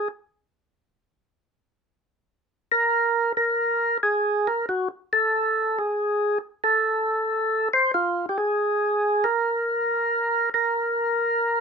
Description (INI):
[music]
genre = jazz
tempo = 92 BPM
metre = 4/4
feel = swing 69% on 8ths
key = unclear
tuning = A4 = 440 Hz
[part]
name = percussive tonewheel organ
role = solo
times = 0.0-11.6 s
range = F4 to C5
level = -21 LUFS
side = right 1 dB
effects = slow rotary speaker
[sound]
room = moderate club ambience, RT60 0.5 s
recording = minimal, uncompressed stereo recording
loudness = -21 LUFS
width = side -5 dB against mid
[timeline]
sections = 0.0-11.6 A section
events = none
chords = none